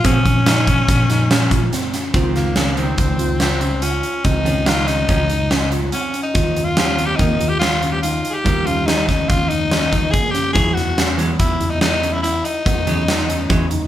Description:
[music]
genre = progressive instrumental, band music in an uneven meter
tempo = 143 BPM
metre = 5/4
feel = straight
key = Db lydian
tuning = A4 = 440 Hz
[part]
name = raspy tenor saxophone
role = melody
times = 0.0-13.7 s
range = Bb3 to Ab4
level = -21 LUFS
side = left 2 dB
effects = none
[part]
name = archtop guitar, miked and amplified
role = accompaniment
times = 0.0-13.7 s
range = Db3 to Db4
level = -24 LUFS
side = right 1 dB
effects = none
[part]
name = mellow fretless electric bass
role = bass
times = 0.0-13.9 s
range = Bb1 to E2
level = -21 LUFS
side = equal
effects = none
[part]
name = huge arena drum kit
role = drums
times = 0.0-13.8 s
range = hi-hat, kick drum, snare drum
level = -19 LUFS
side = equal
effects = none
[part]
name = tube shaker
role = percussion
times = 0.0-1.8 s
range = none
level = -36 LUFS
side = left 7 dB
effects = none
[part]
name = overdriven tine electric piano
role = arpeggios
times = 0.1-13.9 s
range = Bb3 to F4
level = -25 LUFS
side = right 1 dB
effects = none
[sound]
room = moderate large studio reverb, RT60 1.1 s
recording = band playing live in one room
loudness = -15 LUFS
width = side -12 dB against mid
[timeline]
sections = 0.0-2.1 A section; 2.1-13.9 B section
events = none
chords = 0.0 Bbmadd9; 2.1 Dbmaj7; 6.4 Ebadd9; 10.6 Eadd9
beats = | 0.05 0.47 0.89 1.31 1.73 | 2.15 2.56 2.98 3.40 3.83 | 4.25 4.67 5.09 5.51 5.93 | 6.35 6.77 7.19 7.62 8.04 | 8.46 8.88 9.30 9.72 10.14 | 10.56 10.98 11.40 11.82 12.24 | 12.66 13.08 13.50

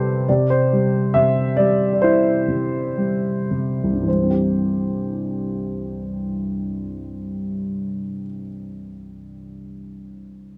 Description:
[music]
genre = classical, lyrical solo piano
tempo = 51-69 BPM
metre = 4/4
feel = rubato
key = C major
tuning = A4 = 440 Hz
[part]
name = warm baby grand piano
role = solo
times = 0.0-10.6 s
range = C2 to E5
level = -22 LUFS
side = equal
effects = none
[sound]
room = light reverb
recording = close, detailed microphones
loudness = -21 LUFS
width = mono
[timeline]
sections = 0.3-4.1 A section; 4.1-8.5 B section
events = slowing down 0.0-4.1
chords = 0.3 C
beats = | 0.28 1.15 2.02 2.98 | 4.08 5.23 6.33 7.40

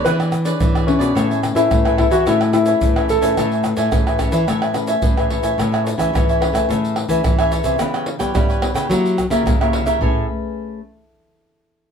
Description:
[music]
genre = samba and choro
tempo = 108 BPM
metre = 4/4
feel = straight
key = A major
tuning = A4 = 441 Hz
[part]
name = warm baby grand piano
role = melody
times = 0.0-5.0 s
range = C#4 to B4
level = -18 LUFS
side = left 2 dB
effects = none
[part]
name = cavaquinho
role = accompaniment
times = 0.0-10.2 s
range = E4 to G#5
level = -22 LUFS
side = right 2 dB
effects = none
[part]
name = nylon-string guitar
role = accompaniment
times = 0.0-10.8 s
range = B2 to C#5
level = -23 LUFS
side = left 5 dB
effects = none
[part]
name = nylon-string guitar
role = bass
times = 0.1-10.3 s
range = A2 to A3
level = -22 LUFS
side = equal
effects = none
[part]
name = tube shaker, surdo, pandeiro and tamborim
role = percussion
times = 0.1-10.1 s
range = none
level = -20 LUFS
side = right 1 dB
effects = none
[sound]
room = moderate studio ambience, RT60 0.5 s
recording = band playing live in one room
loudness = -15 LUFS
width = side -7 dB against mid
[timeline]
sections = 0.0-5.6 A section; 5.6-10.0 B section; 10.0-11.9 C section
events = none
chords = 0.0 E6; 1.2 Amaj9; 7.8 C#m7b5; 8.9 F#7b9; 10.0 Amaj9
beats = 0.05 0.60 | 1.16 1.71 2.26 2.82 | 3.37 3.92 4.48 5.03 | 5.58 6.14 6.69 7.25 | 7.80 8.35 8.91 9.46 | 10.02 10.57

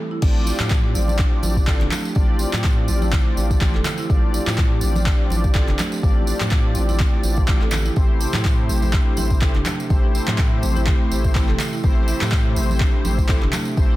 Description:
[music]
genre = afro house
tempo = 124 BPM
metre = 4/4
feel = swing 56% on 16ths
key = unclear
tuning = A4 = 440 Hz
[part]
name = warm analog pad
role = sustained chords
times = 0.0-14.0 s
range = C3 to A4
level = -32 LUFS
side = equal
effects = chorus, sidechain pumping
[part]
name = marimba with medium mallets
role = arpeggios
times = 0.1-14.0 s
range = E3 to A4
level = -29 LUFS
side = right 3 dB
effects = sidechain pumping, tape echo
[part]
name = mellow synth brass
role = stabs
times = 0.2-14.0 s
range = A3 to D5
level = -28 LUFS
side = left 3 dB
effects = chorus, cassette tape, sidechain pumping, tape echo
[part]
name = round analog bass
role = bass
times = 0.2-14.0 s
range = E1 to A2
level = -23 LUFS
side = equal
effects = sidechain pumping
[part]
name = afro-pop drum kit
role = drums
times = 0.2-13.6 s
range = crash cymbal, handclaps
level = -28 LUFS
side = equal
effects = none
[part]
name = electronic kick drum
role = drums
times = 0.2-13.9 s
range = none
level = -18 LUFS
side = equal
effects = none
[part]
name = congas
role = percussion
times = 0.2-13.9 s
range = none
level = -31 LUFS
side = right 2 dB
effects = none
[part]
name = tambourine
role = percussion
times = 0.2-13.9 s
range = none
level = -34 LUFS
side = right 3 dB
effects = none
[sound]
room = studio reverb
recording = dense, heavily limited modern master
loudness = -17 LUFS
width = side -16 dB against mid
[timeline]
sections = 0.2-14.0 A section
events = drop 0.2-14.0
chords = 0.2 G7sus4; 8.0 Am7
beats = | 0.22 0.71 1.19 1.68 | 2.16 2.64 3.13 3.61 | 4.09 4.58 5.06 5.55 | 6.03 6.51 7.00 7.48 | 7.96 8.45 8.93 9.42 | 9.90 10.38 10.87 11.35 | 11.84 12.32 12.80 13.29 | 13.77

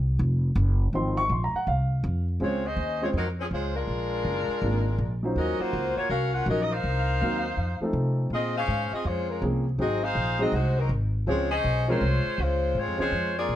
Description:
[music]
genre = jazz, big band swing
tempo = 162 BPM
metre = 4/4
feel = swing 64% on 8ths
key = Db major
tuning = A4 = 440 Hz
[part]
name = upright bass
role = bass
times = 0.0-13.6 s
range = F1 to C3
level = -27 LUFS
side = equal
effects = none
[part]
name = warm grand piano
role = accompaniment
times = 0.9-13.1 s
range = Eb3 to Db6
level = -29 LUFS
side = equal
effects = none
[part]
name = mellow saxophone section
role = melody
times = 2.4-13.6 s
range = F3 to Gb5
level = -27 LUFS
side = left 2 dB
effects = none
[sound]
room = light reverb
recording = dark, warm production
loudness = -24 LUFS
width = side -12 dB against mid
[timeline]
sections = 0.0-2.4 A section; 2.4-13.6 B section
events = grand piano solo 0.0-2.4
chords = 0.0 Dbmaj7 (rootless); 2.4 Dbmaj7; 3.9 Bb7; 5.4 Ebm9; 6.8 Cm7b5; 7.6 F7; 8.3 Bbm9; 9.8 Ab7; 11.3 Dbmaj7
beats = 0.20 0.56 | 0.93 1.30 1.67 2.04 | 2.41 2.78 3.15 3.52 | 3.89 4.26 4.63 5.00 | 5.37 5.74 6.10 6.47 | 6.84 7.21 7.58 7.95 | 8.32 8.69 9.06 9.43 | 9.79 10.16 10.53 10.90 | 11.27 11.64 12.01 12.38 | 12.75 13.12 13.49

